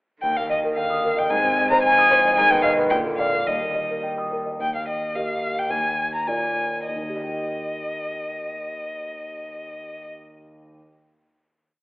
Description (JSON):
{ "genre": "quick classical-period movement for piano trio", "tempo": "98-114 BPM", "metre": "2/4", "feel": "rubato", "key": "Eb major", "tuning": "A4 = 437 Hz", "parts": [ { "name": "warm violin", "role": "melody", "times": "0.2-10.1 s", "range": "Eb5 to Bb5", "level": "-22 LUFS", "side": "left 1 dB", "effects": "none" }, { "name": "warm cello", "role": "second line", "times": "0.2-4.4 s", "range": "C3 to G3", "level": "-33 LUFS", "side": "right 2 dB", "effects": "none" }, { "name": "warm concert grand piano", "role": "accompaniment", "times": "0.2-10.9 s", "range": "Eb2 to Eb6", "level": "-25 LUFS", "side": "equal", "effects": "none" } ], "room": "wet scoring stage reverb, RT60 1.7 s", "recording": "telephone sound", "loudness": "-20 LUFS", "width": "side -23 dB against mid", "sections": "0.2-4.6 A section; 4.6-6.9 coda; 6.9-9.3 final chord", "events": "slowing down 4.0-6.9", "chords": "0.2 Eb; 1.3 Ab; 2.4 Fm7b5/Ab (rootless); 2.9 Bb; 3.5 Eb; 5.7 Bb7/Eb; 6.9 Eb", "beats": "| 0.22 0.76 | 1.30 1.84 | 2.36 2.90 | 3.46 4.03 | 4.60 5.15 | 5.70 6.27 | 6.88 7.48 | 8.09 8.70" }